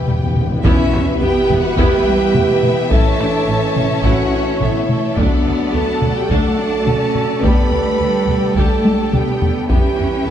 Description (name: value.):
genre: cinematic, epic orchestral film score.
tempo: 106 BPM.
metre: 4/4.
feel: straight.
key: E dorian.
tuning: A4 = 440 Hz.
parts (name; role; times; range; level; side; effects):
warm symphonic violin section; melody; 0.0-10.3 s; D5 to B5; -27 LUFS; left 4 dB; none.
mellow French horn section; sustained chords; 0.0-10.3 s; B3 to B4; -20 LUFS; right 1 dB; none.
warm symphonic string section; sustained chords; 0.0-10.3 s; A3 to G5; -25 LUFS; right 1 dB; none.
warm trombone section; sustained chords; 0.0-10.3 s; B2 to B3; -26 LUFS; right 1 dB; none.
dark trumpet section; stabs; 0.0-10.3 s; A4 to C#5; -27 LUFS; equal; none.
timpani; percussion; 0.0-1.4 s; E2; -23 LUFS; left 1 dB; none.
warm symphonic violin section; second line; 0.1-10.3 s; G3 to G5; -28 LUFS; left 3 dB; none.
warm studio viola section; accompaniment; 0.1-10.3 s; F#3 to G4; -26 LUFS; right 1 dB; none.
warm studio double bass section; bass; 0.1-10.3 s; E1 to E2; -22 LUFS; right 2 dB; none.
warm symphonic cello section; bass; 0.1-10.3 s; E2 to D4; -22 LUFS; right 1 dB; none.
taiko ensemble; drums; 0.1-10.2 s; none; -18 LUFS; left 1 dB; none.
sub drop; sound effects; 0.8-2.9 s; none; -27 LUFS; equal; none.
room: moderate scoring stage reverb, RT60 1.9 s.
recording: dark, warm production.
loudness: -13 LUFS.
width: side -10 dB against mid.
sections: 0.6-10.3 A section.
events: timpani fill 0.0-0.6; impact 0.6-2.9; drum fill 8.8-9.7.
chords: 0.0 Em; 2.9 A; 5.2 D; 7.4 G/D; 9.7 Em.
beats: 0.07 | 0.64 1.20 1.77 2.33 | 2.90 3.47 4.03 4.60 | 5.16 5.73 6.30 6.86 | 7.43 7.99 8.56 9.13 | 9.69 10.26.